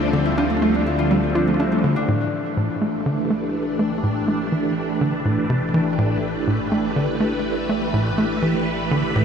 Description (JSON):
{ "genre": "ambient, sequencer-driven space music", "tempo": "123 BPM", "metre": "4/4", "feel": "straight", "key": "A minor", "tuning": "A4 = 440 Hz", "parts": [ { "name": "phased string machine", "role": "sustained chords", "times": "0.0-9.2 s", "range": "D3 to B4", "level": "-22 LUFS", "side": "right 1 dB", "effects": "ensemble chorus, phaser, shimmer reverb" }, { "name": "Celtic harp", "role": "arpeggios", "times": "0.0-5.0 s", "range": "A3 to F4", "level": "-26 LUFS", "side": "left 4 dB", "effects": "auto-pan, ping-pong delay, shimmer reverb" }, { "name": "analog drone", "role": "bass", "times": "0.0-9.2 s", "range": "A1 to D2", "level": "-35 LUFS", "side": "equal", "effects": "chorus" }, { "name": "tight sequencer bass", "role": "riff", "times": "0.1-9.2 s", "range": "A2 to F4", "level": "-22 LUFS", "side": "equal", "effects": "ping-pong delay" } ], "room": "moderate huge ambient reverb, RT60 8.2 s", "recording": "dreamy mix soaked in reverb", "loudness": "-18 LUFS", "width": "side -7 dB against mid", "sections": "0.0-2.1 A section; 2.1-9.2 B section", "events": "fade-in on synth drone 2.1-9.2", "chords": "0.0 Dmadd9; 2.1 A7(no3)" }